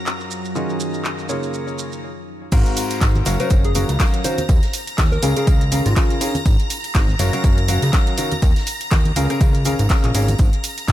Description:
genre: piano house.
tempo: 122 BPM.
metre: 4/4.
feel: swing 57% on 16ths.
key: unclear.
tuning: A4 = 439 Hz.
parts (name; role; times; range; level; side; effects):
string machine, violins; sustained chords; 0.0-10.9 s; Bb5 to Bb6; -30 LUFS; equal; ensemble chorus, sidechain pumping.
clear grand piano; riff; 0.0-10.3 s; Ab2 to F5; -24 LUFS; left 1 dB; sidechain pumping, ping-pong delay.
deep dark ambient pad; texture; 0.0-2.0 s; Gb3 to Bb5; -31 LUFS; right 2 dB; chorus, built-in reverb, sidechain pumping.
garage drum kit; drums; 0.1-10.9 s; crash cymbal, handclaps, hi-hat, rim click, shaker; -26 LUFS; equal; none.
unplugged drum kit; drums; 0.1-10.9 s; hi-hat, snare drum, tambourine; -37 LUFS; right 3 dB; none.
fat analog bass; bass; 2.5-10.9 s; Gb1 to Eb2; -20 LUFS; equal; sidechain pumping.
electronic kick drum; drums; 2.5-10.9 s; none; -16 LUFS; equal; none.
tambourine and congas; percussion; 2.5-10.9 s; none; -31 LUFS; right 1 dB; none.
soft struck synth lead; melody; 3.4-6.4 s; F4 to C5; -27 LUFS; left 1 dB; chorus, ping-pong delay.
room: small room ambience.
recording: none.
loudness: -16 LUFS.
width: side -13 dB against mid.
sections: 0.0-2.5 A section; 2.5-10.9 B section.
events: drop 2.5-10.9.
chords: 0.0 Gbmaj7; 0.6 Ebm11; 1.3 Db6; 2.5 Ab13; 3.3 Gbmaj7; 4.5 Eb5; 5.2 Db6; 6.5 Absus2; 7.2 Gbmaj7; 8.4 Eb5; 9.2 Db6; 10.4 Absus2.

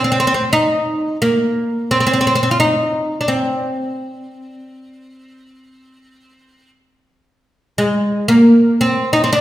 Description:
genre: turkish.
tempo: 87 BPM.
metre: 4/4.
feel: straight.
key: C makam nihavent.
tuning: A4 = 439 Hz.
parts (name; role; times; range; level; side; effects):
oud; solo; 0.0-9.4 s; Ab3 to F4; -13 LUFS; equal; none.
room: wet recital hall reverb, RT60 1.5 s.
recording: recorded in a church or concert hall.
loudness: -13 LUFS.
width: side -14 dB against mid.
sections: 0.0-7.4 A section; 7.4-9.4 B section.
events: none.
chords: none.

